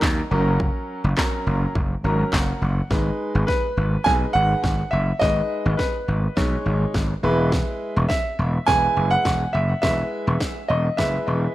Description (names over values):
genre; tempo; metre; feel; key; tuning
dance-pop; 104 BPM; 4/4; straight; G# minor; A4 = 439 Hz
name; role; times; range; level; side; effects
clear grand piano; accompaniment; 0.0-11.5 s; F#3 to A#5; -27 LUFS; equal; sidechain pumping
gritty slap bass; bass; 0.0-11.5 s; E1 to D#2; -22 LUFS; equal; overdrive, sidechain pumping
house drum kit; drums; 0.0-11.1 s; handclaps, kick drum, snare drum; -24 LUFS; equal; overdrive
bright concert grand piano; melody; 3.5-11.5 s; B4 to G#5; -23 LUFS; right 1 dB; ping-pong delay
room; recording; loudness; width
small room reverb; rough home demo mix, high-pass filter; -19 LUFS; side -15 dB against mid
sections
0.0-2.9 A section; 2.9-11.5 B section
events
grand piano fill 1.8-2.9; build-up 2.9-11.5; drum fill 2.9-11.5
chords
0.3 F#; 2.9 G#m; 7.2 E